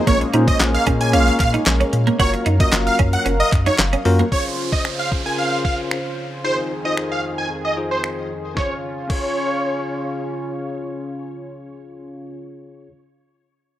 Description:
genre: dance-pop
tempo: 113 BPM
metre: 4/4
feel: straight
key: Db major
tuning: A4 = 440 Hz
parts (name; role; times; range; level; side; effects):
- chorused pulse-width pad; sustained chords; 0.0-12.4 s; F2 to F5; -26 LUFS; left 1 dB; sidechain pumping, low-pass filter
- twelve-string electric guitar; riff; 0.0-4.3 s; Bb3 to Gb4; -22 LUFS; right 6 dB; ensemble chorus
- supersaw chords; melody; 0.1-10.1 s; C5 to Ab5; -23 LUFS; right 1 dB; low-pass filter, ping-pong delay
- bell-like tine electric piano; accompaniment; 0.1-12.9 s; Bb3 to Db5; -26 LUFS; left 2 dB; sidechain pumping, low-pass filter
- warm sub bass; bass; 0.1-4.2 s; Gb1 to Bb2; -19 LUFS; equal; sidechain pumping
- detuned 8-bit digital drum machine; drums; 0.1-9.3 s; crash cymbal, finger snaps, handclaps, hi-hat, kick drum, snare drum; -20 LUFS; equal; none
- group handclap; percussion; 0.6-3.9 s; none; -27 LUFS; left 1 dB; none
- downlifter; sound effects; 4.3-8.6 s; none; -32 LUFS; right 4 dB; none
room: light reverb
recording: rough home demo mix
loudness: -17 LUFS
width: side -13 dB against mid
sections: 0.0-4.3 A section; 4.3-8.6 B section; 8.6-12.8 C section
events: drop 0.0-4.3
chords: 0.1 Bbm7; 2.2 Gbmaj7; 4.3 Dbmaj7; 6.4 Fm7; 8.6 Db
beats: | 0.07 0.60 1.13 1.67 | 2.20 2.73 3.26 3.79 | 4.32 4.85 5.38 5.91 | 6.44 6.97 7.51 8.04 | 8.57 9.10 9.63 10.16 | 10.69 11.22 11.75 12.29

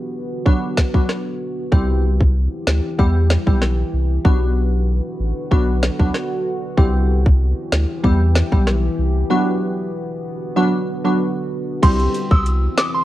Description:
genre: dancehall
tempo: 95 BPM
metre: 4/4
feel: straight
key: unclear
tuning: A4 = 440 Hz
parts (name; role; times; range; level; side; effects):
- deep dark ambient pad; sustained chords; 0.0-13.0 s; D3 to G4; -26 LUFS; equal; chorus, built-in reverb, sidechain pumping
- glassy wavetable pluck; accompaniment; 0.5-12.4 s; F#3 to G4; -21 LUFS; equal; chorus, sidechain pumping
- island pop drum kit; drums; 0.5-12.9 s; crash cymbal, hi-hat, kick drum, rim click, snare drum; -16 LUFS; equal; overdrive
- warm sub bass; bass; 1.7-12.7 s; A1 to E2; -17 LUFS; equal; none
- soft synth bell; melody; 11.8-13.0 s; C6 to E6; -21 LUFS; right 2 dB; chorus, ping-pong delay
- cabasa and woodblock; percussion; 12.1-12.9 s; none; -29 LUFS; left 1 dB; none
room: light reverb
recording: worn, warbling old tape, cassette tape, warbly pitch drift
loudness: -16 LUFS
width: side -15 dB against mid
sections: 0.0-11.8 A section; 11.8-13.0 B section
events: break 9.3-11.8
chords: 0.0 Bm; 1.7 C; 3.0 Em; 4.2 Bm; 6.8 C; 8.0 Em; 9.3 Bm; 11.8 C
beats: 0.46 1.09 | 1.72 2.35 2.99 3.62 | 4.25 4.88 5.51 6.14 | 6.78 7.41 8.04 8.67 | 9.30 9.93 10.56 11.20 | 11.83 12.46

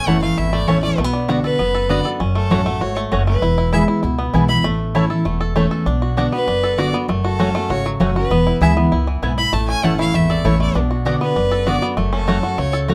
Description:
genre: bluegrass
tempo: 196 BPM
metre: 4/4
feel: straight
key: A major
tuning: A4 = 439 Hz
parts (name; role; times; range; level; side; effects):
- clear fiddle; melody; 0.0-12.7 s; A4 to B5; -25 LUFS; equal; none
- picked steel-string acoustic guitar; accompaniment; 0.0-12.9 s; E2 to F#4; -21 LUFS; equal; none
- bluegrass banjo; arpeggios; 0.0-12.9 s; E3 to A4; -26 LUFS; equal; none
- mandolin; stabs; 0.1-12.9 s; A3 to A5; -26 LUFS; equal; none
- upright bass; bass; 0.1-12.9 s; E1 to D2; -24 LUFS; equal; none
room: light reverb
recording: none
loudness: -18 LUFS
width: mono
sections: 0.0-5.9 A section; 5.9-12.9 A section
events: none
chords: 0.0 A; 1.0 Bm; 2.2 F#m; 3.4 E; 4.6 A; 5.9 Bm; 7.1 F#m; 8.3 E; 9.5 A; 10.8 Bm; 12.0 F#m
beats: 0.07 0.37 0.68 | 0.98 1.29 1.59 1.90 | 2.21 2.51 2.81 3.12 | 3.42 3.73 4.04 4.34 | 4.65 4.95 5.26 5.56 | 5.87 6.17 6.48 6.78 | 7.09 7.39 7.70 8.00 | 8.31 8.62 8.92 9.23 | 9.53 9.84 10.14 10.45 | 10.75 11.06 11.37 11.67 | 11.98 12.28 12.59 12.89

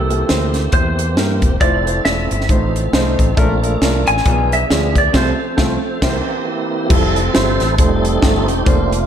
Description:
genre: uptempo gospel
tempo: 136 BPM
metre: 4/4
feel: swing 59% on 8ths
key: F major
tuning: A4 = 436 Hz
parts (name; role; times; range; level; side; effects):
- clean lap steel guitar; melody; 0.0-6.4 s; A4 to Ab5; -20 LUFS; equal; slapback echo
- warm upright piano; accompaniment; 0.0-9.0 s; A2 to D5; -21 LUFS; equal; slapback echo
- tonewheel organ; sustained chords; 0.0-9.1 s; E3 to C5; -22 LUFS; right 2 dB; overdrive, chorus vibrato, slow rotary speaker
- modern bright fingered electric bass; bass; 0.0-9.0 s; E1 to G2; -19 LUFS; equal; none
- crisp fusion drum kit; drums; 0.1-9.0 s; crash cymbal, hi-hat, kick drum, snare drum; -17 LUFS; equal; none
room: moderate lush hall reverb, RT60 1.8 s, small room ambience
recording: big arena sound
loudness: -13 LUFS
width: side -9 dB against mid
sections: 0.0-6.9 A section; 6.9-9.1 B section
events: band accent 5.1-6.9; tonewheel organ solo 6.9-9.1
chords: 0.0 C7; 1.6 Fmaj7; 2.5 F7/A; 3.4 Bbmaj7; 4.3 Bdim7; 5.1 F/C; 6.0 C7; 6.9 Fmaj9; 7.8 F7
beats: 0.29 0.73 1.17 | 1.61 2.05 2.49 2.93 | 3.37 3.81 4.25 4.70 | 5.14 5.58 6.02 6.46 | 6.90 7.34 7.79 8.23 | 8.67

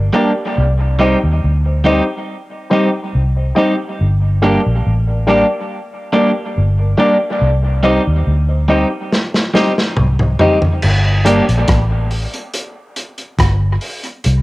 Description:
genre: dub reggae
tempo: 70 BPM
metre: 4/4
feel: straight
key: G minor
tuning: A4 = 440 Hz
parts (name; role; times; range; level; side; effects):
- dark concert grand piano; stabs; 0.0-11.4 s; D4 to Eb5; -18 LUFS; left 2 dB; high-pass filter, dub echo
- vintage muted fingered electric bass; bass; 0.0-14.4 s; G1 to Eb2; -14 LUFS; equal; none
- electric guitar at the edge of break-up; accompaniment; 0.1-11.4 s; G3 to G4; -18 LUFS; right 2 dB; spring reverb, high-pass filter, dub echo
- crunchy breakbeat drum kit; drums; 9.1-14.4 s; crash cymbal, hi-hat, kick drum, rim click, snare drum, toms; -17 LUFS; equal; cassette tape
room: moderate studio ambience, RT60 0.5 s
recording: home recording on cassette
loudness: -12 LUFS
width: side -19 dB against mid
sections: 0.0-10.8 A section; 10.8-14.4 B section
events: drum fill 9.1-10.8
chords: 0.0 Gm; 0.6 Cm; 4.0 Gm; 7.4 Cm; 10.8 Gm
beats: | 0.57 1.42 2.28 3.13 | 3.99 4.84 5.70 6.55 | 7.41 8.27 9.12 9.97 | 10.83 11.69 12.54 13.39 | 14.25

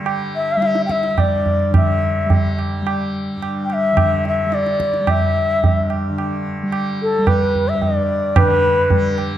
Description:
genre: indian classical, Hindustani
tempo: 109 BPM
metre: 3/4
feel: straight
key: unclear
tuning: A4 = 440 Hz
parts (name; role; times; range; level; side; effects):
- tanpura; drone; 0.0-9.4 s; G2 to G3; -22 LUFS; equal; none
- tabla; percussion; 0.1-9.4 s; none; -19 LUFS; right 2 dB; none
- breathy mellow bansuri; melody; 0.4-9.2 s; A4 to G5; -18 LUFS; left 2 dB; none
room: moderate scoring stage reverb, RT60 1.6 s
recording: dark, warm production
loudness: -15 LUFS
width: side -12 dB against mid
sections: 0.0-8.4 A section; 8.4-9.4 B section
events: speeding up 0.0-9.4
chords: none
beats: | 0.07 0.63 1.19 | 1.75 2.31 2.87 | 3.43 3.98 4.54 | 5.09 5.64 6.19 | 6.74 7.28 7.83 | 8.37 8.91

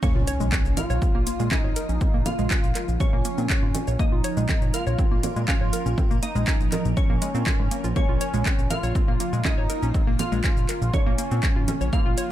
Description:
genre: melodic techno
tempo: 121 BPM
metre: 4/4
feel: straight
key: Bb minor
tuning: A4 = 440 Hz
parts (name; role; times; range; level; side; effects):
- wide unison lead; melody; 0.0-12.3 s; Db4 to F4; -31 LUFS; equal; sidechain pumping, digital delay
- glassy wavetable pluck; second line; 0.0-12.3 s; Db5 to F5; -37 LUFS; equal; chorus, sidechain pumping, ping-pong delay
- evolving wavetable pad; sustained chords; 0.0-12.3 s; Db3 to Bb4; -34 LUFS; right 2 dB; ensemble chorus, built-in reverb, phaser, sidechain pumping
- warbly dusty pluck; arpeggios; 0.0-12.2 s; Ab3 to Db5; -31 LUFS; equal; chorus, sidechain pumping, ping-pong delay
- electronic kick drum; drums; 0.0-12.0 s; none; -23 LUFS; equal; none
- house drum kit; drums; 0.0-12.3 s; congas, handclaps, hi-hat, shaker; -30 LUFS; right 2 dB; none
- impact; sound effects; 0.0-2.0 s; none; -31 LUFS; equal; none
- fat analog bass; bass; 0.2-12.2 s; Ab1 to Bb2; -26 LUFS; equal; sidechain pumping
room: digital ambience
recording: high-pass filter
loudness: -20 LUFS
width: side -12 dB against mid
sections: 0.0-12.3 A section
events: drop 0.0-12.3; impact 0.0-2.0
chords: 0.0 Bbm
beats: | 0.03 0.52 1.02 1.51 | 2.01 2.51 3.00 3.50 | 3.99 4.49 4.99 5.48 | 5.98 6.47 6.97 7.46 | 7.96 8.46 8.95 9.45 | 9.95 10.44 10.94 11.43 | 11.93

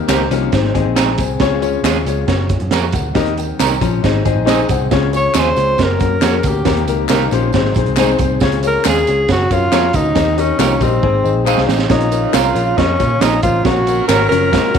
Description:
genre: uptempo 1960s-style soul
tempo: 137 BPM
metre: 4/4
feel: straight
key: Db major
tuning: A4 = 440 Hz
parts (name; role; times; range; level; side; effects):
- dark baby grand piano; accompaniment; 0.0-14.8 s; Ab2 to Bb5; -19 LUFS; left 10 dB; none
- electric guitar at the edge of break-up; stabs; 0.1-14.2 s; Ab3 to Bb4; -23 LUFS; right 9 dB; lush chorus
- vintage muted picked electric bass; bass; 0.1-14.8 s; F1 to Bb2; -19 LUFS; equal; none
- crunchy breakbeat drum kit; drums; 0.1-14.8 s; hi-hat, kick drum, snare drum; -18 LUFS; right 5 dB; none
- handclaps and tambourine; percussion; 0.1-14.8 s; none; -28 LUFS; left 3 dB; none
- vintage hollow-body jazz guitar; riff; 0.3-11.7, 14.3-14.8 s; Db3 to Ab4; -22 LUFS; left 11 dB; none
- breathy tenor saxophone; melody; 5.2-14.8 s; C4 to Db5; -17 LUFS; equal; none
- warm saxophone section; second line; 11.9-14.8 s; Db3 to Bb4; -24 LUFS; right 12 dB; none
room: moderate plate reverb, RT60 1.5 s, small room reverb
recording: 1960s-style stereo with parts hard left and right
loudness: -12 LUFS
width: side -7 dB against mid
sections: 0.0-11.9 A section; 11.9-14.8 B section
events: drum fill 11.0-11.9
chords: 0.0 Eb; 0.5 Ab; 1.4 Db; 2.3 Gb; 3.2 Eb; 4.0 Ab; 4.9 Db; 5.8 Gb; 6.7 Eb; 7.5 Ab; 8.4 Db; 9.3 Gb; 10.2 Eb; 11.0 Ab; 11.9 Bbm; 13.7 Gb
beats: 0.09 0.53 0.97 | 1.41 1.84 2.28 2.72 | 3.16 3.60 4.04 4.47 | 4.91 5.35 5.79 6.23 | 6.66 7.10 7.54 7.98 | 8.41 8.85 9.29 9.72 | 10.16 10.60 11.03 11.47 | 11.91 12.34 12.78 13.21 | 13.65 14.09 14.52

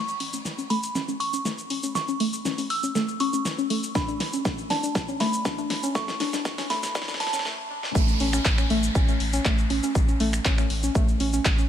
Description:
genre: progressive house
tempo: 120 BPM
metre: 4/4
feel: straight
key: A major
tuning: A4 = 440 Hz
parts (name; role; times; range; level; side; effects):
- glassy synth bell; melody; 0.0-7.5 s; A5 to E6; -31 LUFS; right 2 dB; chorus, sidechain pumping, ping-pong delay
- soft round pluck; arpeggios; 0.0-11.7 s; A3 to D4; -28 LUFS; left 1 dB; chorus, sidechain pumping, ping-pong delay
- round analog bass; bass; 0.0-11.6 s; A1 to B1; -31 LUFS; equal; tube saturation, sidechain pumping, high-pass filter
- big-room dance drum kit; drums; 0.1-11.7 s; cabasa, finger snaps, handclaps, hi-hat, snare drum; -30 LUFS; left 1 dB; studio reverb
- electronic kick drum; drums; 4.0-11.6 s; none; -23 LUFS; equal; studio reverb
- downlifter; sound effects; 8.0-11.7 s; none; -36 LUFS; right 1 dB; none
room: light reverb, digital ambience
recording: high-pass filter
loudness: -23 LUFS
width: side -10 dB against mid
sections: 0.0-8.0 A section; 8.0-11.7 B section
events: build-up 0.0-8.0; drum fill 0.0-7.5, 7.5-8.0; filter sweep on synth pluck 0.0-8.0; break 7.5-8.0; drop 8.0-11.7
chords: 0.0 A; 4.0 Bm; 8.0 A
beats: 0.45 0.95 1.45 | 1.95 2.45 2.95 3.45 | 3.95 4.45 4.95 5.45 | 5.95 6.45 6.95 7.45 | 7.95 8.45 8.95 9.45 | 9.95 10.45 10.95 11.45

